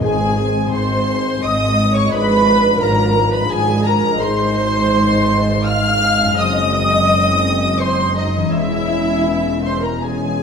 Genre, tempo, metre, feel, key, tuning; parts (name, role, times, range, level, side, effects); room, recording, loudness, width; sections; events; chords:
classical, slow romantic movement for symphony orchestra; 84 BPM; 3/4; uneven beats, rubato; Ab major; A4 = 443 Hz
warm symphonic violin section; melody; 0.0-10.4 s; Eb5 to F6; -22 LUFS; left 1 dB
warm symphonic violin section; second line; 0.0-10.4 s; Eb5 to F6; -21 LUFS; left 2 dB
dark symphonic viola section; accompaniment; 0.0-10.4 s; Eb4 to F5; -20 LUFS; right 2 dB
mellow French horn section; sustained chords; 0.0-10.4 s; F3 to Eb4; -23 LUFS; left 3 dB
concert harp; arpeggios; 0.0-10.4 s; Gb2 to D5; -26 LUFS; left 7 dB
dark chamber cello section; bass; 0.0-10.4 s; Fb2 to Ab2; -22 LUFS; right 1 dB
rich symphonic double bass section; bass; 0.0-10.4 s; Fb1 to Ab1; -22 LUFS; right 2 dB
timpani; percussion; 0.0-1.0 s; Ab2; -28 LUFS; equal
moderate scoring stage reverb, RT60 2.0 s; dark, warm production, lossy compression artefacts; -14 LUFS; side -6 dB against mid
0.0-10.4 A section
0.0 Ab; 2.1 Abdim7; 4.2 Ab; 6.4 Ab7/Gb; 8.5 Dbm/Fb